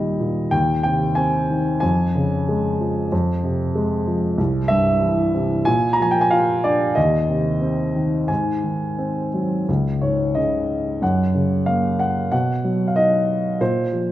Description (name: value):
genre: classical, lyrical solo piano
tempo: 92 BPM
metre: 4/4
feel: rubato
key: Ab major, Db major from 9.7 s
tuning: A4 = 443 Hz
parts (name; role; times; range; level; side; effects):
- dark grand piano; solo; 0.0-14.1 s; C2 to Bb5; -18 LUFS; equal; none
room: moderate recital hall reverb, RT60 1.6 s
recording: minimal, uncompressed stereo recording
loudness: -18 LUFS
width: side -14 dB against mid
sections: 0.0-9.7 A section; 9.7-14.1 B section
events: none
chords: 0.0 Eb; 0.5 Ab/Eb; 1.8 Db/F; 3.1 Fm; 4.4 C; 5.7 Bb; 7.0 Cm/Eb; 8.3 Ab7; 9.7 Dbsus2; 11.0 Gb; 12.3 Cb; 13.6 Bbsus2